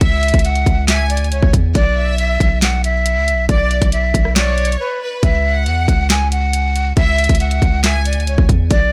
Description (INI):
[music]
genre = hip hop, trap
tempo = 138 BPM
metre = 4/4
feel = half-time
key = C# phrygian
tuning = A4 = 440 Hz
[part]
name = breathy jazz flute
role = melody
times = 0.0-8.9 s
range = B4 to G#5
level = -22 LUFS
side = equal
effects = low-pass filter, digital delay
[part]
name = rich studio violin section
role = second line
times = 0.0-8.2 s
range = B4 to G#5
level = -28 LUFS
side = equal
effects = digital delay
[part]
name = long sustained 808-style bass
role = bass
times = 0.0-8.9 s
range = B1 to E2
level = -19 LUFS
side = equal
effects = none
[part]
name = trap drum kit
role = drums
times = 0.0-8.8 s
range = handclaps, hi-hat, kick drum, rim click, snare drum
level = -18 LUFS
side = equal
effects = none
[sound]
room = little or no reverb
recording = none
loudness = -15 LUFS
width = mono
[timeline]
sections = 0.0-8.9 A section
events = break 4.8-5.2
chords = 0.0 C#m; 1.8 Bm; 5.2 C#m